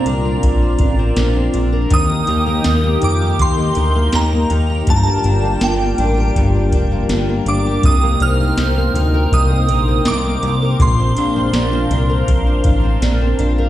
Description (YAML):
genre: dream pop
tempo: 81 BPM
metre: 4/4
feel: straight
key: Bb major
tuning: A4 = 440 Hz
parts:
  - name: shimmering bell with halo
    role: melody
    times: 0.0-13.4 s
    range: G5 to F6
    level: -22 LUFS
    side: right 3 dB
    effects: ensemble chorus, digital delay
  - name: phased analog pad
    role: sustained chords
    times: 0.0-13.7 s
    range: C4 to G5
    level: -23 LUFS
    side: right 1 dB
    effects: phaser, chorus
  - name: fingerpicked twelve-string acoustic guitar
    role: arpeggios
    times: 0.0-13.7 s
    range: G2 to Bb4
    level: -20 LUFS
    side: left 2 dB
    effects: wide subtle chorus, digital delay
  - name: chorused synth bass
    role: bass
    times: 0.1-13.7 s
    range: F1 to F2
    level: -17 LUFS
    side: equal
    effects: none
  - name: soft vintage rhythm box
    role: drums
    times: 0.1-13.6 s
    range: hi-hat, kick drum, snare drum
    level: -18 LUFS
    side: equal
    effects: overdrive
room: light reverb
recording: played on a big sound system in a bare room, stone room reverb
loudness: -13 LUFS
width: side -13 dB against mid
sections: 0.0-13.7 A section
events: none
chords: 0.0 Bbadd9; 1.9 Eb; 4.9 Gm7; 7.8 Cm7; 10.8 Bbadd9